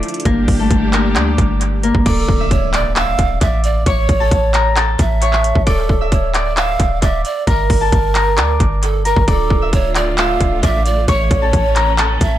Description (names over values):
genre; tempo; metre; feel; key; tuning
hip hop, trap; 133 BPM; 4/4; half-time; D harmonic minor; A4 = 440 Hz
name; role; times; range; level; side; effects
Celtic harp; melody; 0.0-12.4 s; A3 to E6; -19 LUFS; left 4 dB; analog delay
rich symphonic string section; sustained chords; 0.0-2.0, 9.3-12.4 s; D3 to G4; -24 LUFS; equal; none
clean 808-style bass; bass; 0.0-12.4 s; D1 to D2; -18 LUFS; equal; none
trap drum kit; drums; 0.0-12.3 s; crash cymbal, handclaps, hi-hat, kick drum; -17 LUFS; equal; overdrive, vintage 12-bit sampler grit, analog delay
breathy polished pan flute; second line; 2.1-12.4 s; A4 to F5; -20 LUFS; right 6 dB; analog delay
impact; sound effects; 2.1-3.9 s; none; -25 LUFS; equal; none
room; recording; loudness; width
digital ambience; echo-heavy mix; -12 LUFS; side -12 dB against mid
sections
0.0-2.1 A section; 2.1-12.4 B section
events
impact 2.1-3.9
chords
0.3 Gm; 2.1 Dm; 3.9 A; 5.7 Dm; 7.5 Gm; 9.3 Dm; 11.1 A